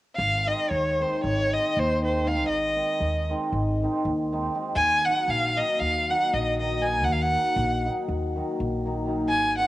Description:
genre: balkan folk, Balkan wedding band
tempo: 238 BPM (eighths)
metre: 9/8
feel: straight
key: Ab mixolydian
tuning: A4 = 440 Hz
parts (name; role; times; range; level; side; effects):
- rich violin; melody; 0.2-9.7 s; C5 to Ab5; -24 LUFS; equal; cassette tape
- upright bass; bass; 0.2-9.6 s; Ab1 to Eb2; -29 LUFS; equal; none
- cimbalom; accompaniment; 0.5-9.7 s; Eb3 to Eb4; -28 LUFS; left 1 dB; cassette tape
room: moderate spring reverb, RT60 1.9 s, studio reverb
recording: home recording on cassette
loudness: -22 LUFS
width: side -16 dB against mid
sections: 0.2-9.7 A section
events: none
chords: 0.2 Ab; 4.8 Ebm

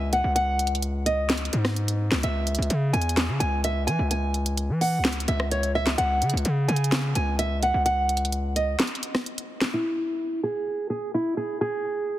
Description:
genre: hip hop, trap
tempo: 128 BPM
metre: 4/4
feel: half-time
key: unclear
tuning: A4 = 440 Hz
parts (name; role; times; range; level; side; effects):
- nylon-string guitar; melody; 0.0-12.2 s; E4 to G#5; -26 LUFS; right 1 dB; low-pass filter, ping-pong delay
- distorted 808-style bass; bass; 0.0-8.8 s; C#2 to E3; -25 LUFS; equal; distortion
- trap drum kit; drums; 0.1-9.7 s; handclaps, hi-hat, rim click, snare drum; -27 LUFS; equal; none
room: light reverb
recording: heavily compressed radio sound, multiband compression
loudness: -22 LUFS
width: side -14 dB against mid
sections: 0.0-9.7 A section; 9.7-12.2 B section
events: break 8.8-9.7; filter sweep on nylon-string guitar 9.7-12.2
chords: 0.4 C#sus24; 2.2 C#m; 6.0 F#5/C#; 9.7 N.C.

